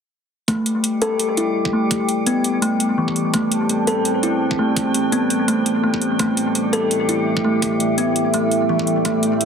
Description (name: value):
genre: half-time drum and bass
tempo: 168 BPM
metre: 4/4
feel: swing 56% on 16ths, half-time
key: A minor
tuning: A4 = 442 Hz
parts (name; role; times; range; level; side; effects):
- deep dark ambient pad; sustained chords; 2.2-9.4 s; A3 to A5; -24 LUFS; right 2 dB; chorus, built-in reverb, sidechain pumping
- kalimba; arpeggios; 0.5-9.2 s; E3 to A4; -19 LUFS; left 1 dB; vintage 12-bit sampler grit, low-pass filter, digital delay
- electronic hi-hat; drums; 0.5-9.4 s; none; -24 LUFS; right 1 dB; none
- electronic kick drum; drums; 0.5-9.1 s; none; -26 LUFS; right 1 dB; high-pass filter on kick, high-pass filter on room
- metallic inharmonic drone; texture; 0.8-9.4 s; G3 to C5; -23 LUFS; equal; chorus, built-in reverb
room: moderate echo chamber reverb, RT60 1.5 s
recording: heavily compressed radio sound, multiband compression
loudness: -17 LUFS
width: side -6 dB against mid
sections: 0.5-9.4 A section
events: filter sweep on ambient pad 0.5-9.4; filter sweep on kalimba 0.5-9.4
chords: 0.5 A5